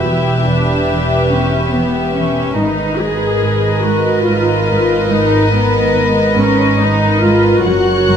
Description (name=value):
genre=cinematic, suspense film score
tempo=71 BPM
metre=3/4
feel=straight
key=unclear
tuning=A4 = 440 Hz
part: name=warm symphonic violin section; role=melody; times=0.0-8.2 s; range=D#5 to F#5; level=-21 LUFS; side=left 4 dB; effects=none
part: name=warm studio violin section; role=second line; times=0.0-8.2 s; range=G4 to C#5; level=-17 LUFS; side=equal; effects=none
part: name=warm studio viola section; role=accompaniment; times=0.0-8.2 s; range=B3 to G#4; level=-16 LUFS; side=equal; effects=none
part: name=warm studio cello section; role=riff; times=0.0-8.2 s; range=E2 to G#2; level=-22 LUFS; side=right 1 dB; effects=none
part: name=warm studio cello section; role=bass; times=0.0-8.2 s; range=E2 to G#2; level=-21 LUFS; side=right 1 dB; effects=none
part: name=warm studio double bass section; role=bass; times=0.0-8.2 s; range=E1 to G#1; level=-19 LUFS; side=right 2 dB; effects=none
part: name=rich studio violin section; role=texture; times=7.6-8.2 s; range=F#6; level=-23 LUFS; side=left 3 dB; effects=none
room=wet recital hall reverb, RT60 1.8 s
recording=none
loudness=-11 LUFS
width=side -8 dB against mid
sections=0.0-8.2 A section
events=none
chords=0.0 Em; 2.6 G#madd9; 7.7 F#